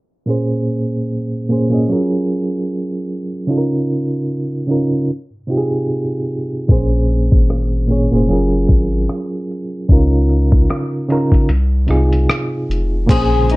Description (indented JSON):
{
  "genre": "lo-fi hip hop",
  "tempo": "75 BPM",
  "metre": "4/4",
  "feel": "swing 59% on 16ths",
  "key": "Bb minor",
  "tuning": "A4 = 440 Hz",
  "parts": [
    { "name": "reed electric piano", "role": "accompaniment", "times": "0.3-13.6 s", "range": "Bb2 to Eb5", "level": "-17 LUFS", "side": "right 1 dB", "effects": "fast tremolo, cassette tape, low-pass filter" },
    { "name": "soft dub sub bass", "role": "bass", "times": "6.7-13.6 s", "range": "F1 to Db2", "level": "-16 LUFS", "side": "equal", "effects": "none" },
    { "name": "dusty soul sampler-style drum kit", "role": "drums", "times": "6.7-13.6 s", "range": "crash cymbal, hi-hat, kick drum, rim click", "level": "-14 LUFS", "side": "equal", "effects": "none" },
    { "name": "electric guitar through a small old amp", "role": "melody", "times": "13.1-13.6 s", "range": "Eb4 to Ab4", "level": "-18 LUFS", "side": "left 6 dB", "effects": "ensemble chorus, low-pass filter" },
    { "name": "granular cloud pad", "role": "sustained chords", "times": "13.4-13.6 s", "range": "Db3 to C5", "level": "-25 LUFS", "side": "equal", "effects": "built-in reverb, low-pass filter" }
  ],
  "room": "light reverb",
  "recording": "dark, warm production, low-pass filter",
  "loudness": "-14 LUFS",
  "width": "side -21 dB against mid",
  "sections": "0.3-13.1 A section",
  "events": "filter sweep 0.3-13.1; break 11.5-13.1",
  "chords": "0.3 Bbm9; 1.9 Gbmaj9; 3.5 Db69; 5.1 Fm7/C; 6.7 Bbm9; 8.3 Gbmaj9; 9.9 Db69; 11.5 Fm7/C"
}